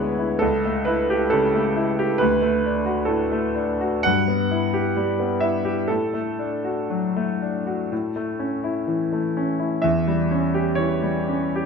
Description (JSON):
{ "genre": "classical, romantic character piece for solo piano", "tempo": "56-69 BPM", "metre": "4/4", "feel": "rubato", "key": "D major", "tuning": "A4 = 440 Hz", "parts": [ { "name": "bright grand piano", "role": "solo", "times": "0.0-11.7 s", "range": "C#2 to F#5", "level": "-20 LUFS", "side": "equal", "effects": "none" } ], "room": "wet large studio reverb, RT60 1.4 s", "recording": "none", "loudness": "-20 LUFS", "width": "side -5 dB against mid", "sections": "0.0-11.7 A section", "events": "none", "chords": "0.4 A7/C#; 2.2 D; 4.0 Em/G; 5.9 D/A; 7.9 A; 9.8 C#dim/E" }